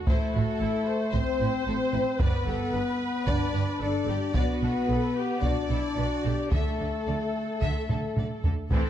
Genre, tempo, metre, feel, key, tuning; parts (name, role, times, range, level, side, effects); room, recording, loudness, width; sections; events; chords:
cinematic, epic orchestral film score; 112 BPM; 4/4; straight; A4 = 437 Hz
rich symphonic viola section; accompaniment; 0.0-8.9 s; E3 to C5; -35 LUFS; right 1 dB
rich studio violin section; melody; 0.1-8.9 s; E4 to E5; -40 LUFS; left 2 dB
rich symphonic violin section; second line; 0.1-8.9 s; C4 to D5; -37 LUFS; left 2 dB
warm French horn section; sustained chords; 0.1-8.4 s; A3 to D4; -29 LUFS; left 3 dB
rich symphonic cello section; bass; 0.1-8.8 s; G2 to D3; -34 LUFS; right 3 dB
rich symphonic double bass section; bass; 0.1-8.8 s; G1 to D2; -33 LUFS; right 3 dB
solo taiko drums; drums; 0.1-8.9 s; -28 LUFS; equal
clear trombone section; sustained chords; 8.7-8.9 s; E3 to C4; -45 LUFS; right 6 dB
moderate scoring stage reverb, RT60 1.6 s; dark, warm production; -25 LUFS; side -10 dB against mid
0.0-8.7 A section
drum fill 7.9-8.7
0.1 Am; 2.2 G; 4.3 Bm7; 6.5 Dsus2